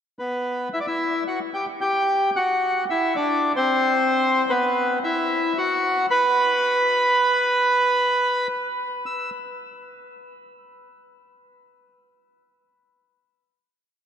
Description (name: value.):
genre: tango.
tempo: 112 BPM.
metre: 4/4.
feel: rubato.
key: E minor.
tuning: A4 = 440 Hz.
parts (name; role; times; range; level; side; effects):
bandoneon; solo; 0.2-9.3 s; B3 to E6; -20 LUFS; equal; analog delay.
room: wet cathedral reverb, RT60 5.8 s.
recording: in a vast, echoing space.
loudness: -19 LUFS.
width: side -8 dB against mid.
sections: 0.0-0.4 pickup bar; 0.4-9.0 A section; 9.0-11.2 final note.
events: none.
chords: 0.4 Emadd9; 2.6 D13; 4.7 B5; 6.9 N.C..